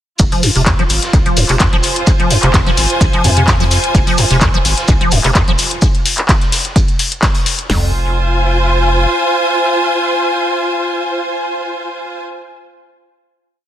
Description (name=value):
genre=acid house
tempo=128 BPM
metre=4/4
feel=swing 53% on 16ths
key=F minor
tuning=A4 = 441 Hz
part: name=acid bass, square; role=riff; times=0.2-7.9 s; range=F2 to F3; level=-16 LUFS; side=equal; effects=tube saturation, ensemble chorus, cassette tape, sidechain pumping, ping-pong delay
part: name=round analog bass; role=bass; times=0.2-9.1 s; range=Eb1 to F2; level=-16 LUFS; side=equal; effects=tube saturation, sidechain pumping
part: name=booming analog drum machine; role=drums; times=0.2-7.7 s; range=handclaps, hi-hat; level=-17 LUFS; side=left 2 dB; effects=none
part: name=punchy analog drum machine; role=drums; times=0.2-7.8 s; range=hi-hat, kick drum, snare drum, toms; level=-14 LUFS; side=equal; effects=none
part: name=raw garage drum kit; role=drums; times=0.2-7.6 s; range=hi-hat, shaker, snare drum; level=-23 LUFS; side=right 1 dB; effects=sidechain pumping on hats, high-pass filter on hats, high-pass filter on snare, sidechain pumping on perc, high-pass filter on perc, high-pass filter on room
part: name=rich studio string section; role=texture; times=0.2-12.2 s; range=F4 to Ab5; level=-16 LUFS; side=equal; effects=sidechain pumping
room=light reverb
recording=dense, heavily limited modern master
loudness=-11 LUFS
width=side -11 dB against mid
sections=0.2-7.7 groove; 7.7-11.4 final chord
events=none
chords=0.2 Fm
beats=| 0.20 0.67 1.13 1.60 | 2.07 2.54 3.01 3.48 | 3.95 4.42 4.88 5.35 | 5.82 6.29 6.76 7.23 | 7.70 8.16 8.63 9.10 | 9.57 10.04 10.51 10.98